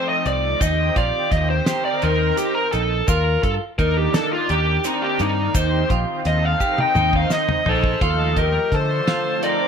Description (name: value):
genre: progressive instrumental, band music in an uneven meter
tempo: 170 BPM (eighths)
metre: 7/8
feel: straight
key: Eb lydian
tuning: A4 = 440 Hz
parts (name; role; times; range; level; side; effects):
- bluesy overdriven lead guitar; melody; 0.0-9.7 s; Eb4 to G5; -21 LUFS; left 1 dB; distortion, plate reverb
- analog string pad; accompaniment; 0.0-9.7 s; D3 to Bb4; -26 LUFS; left 1 dB; ensemble chorus
- clean electric guitar; arpeggios; 0.0-9.7 s; C4 to Eb5; -27 LUFS; right 5 dB; spring reverb
- fingered electric bass; bass; 0.3-9.0 s; Bb1 to D3; -22 LUFS; equal; none
- damped 70s drum kit; drums; 0.3-9.6 s; hi-hat, kick drum, snare drum, toms; -23 LUFS; equal; none
- egg shaker; percussion; 0.3-7.6 s; none; -35 LUFS; left 8 dB; none
- accordion; second line; 7.7-9.7 s; F4 to Bb4; -26 LUFS; left 1 dB; none
room: moderate studio reverb, RT60 0.5 s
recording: none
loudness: -17 LUFS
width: side -7 dB against mid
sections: 0.0-8.0 A section; 8.0-9.7 B section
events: lead electric guitar solo 0.0-8.0; drum fill 6.6-8.0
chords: 0.0 F7; 0.6 Eb6; 3.1 Cm7/Eb; 5.6 Eb6; 8.0 F7/Eb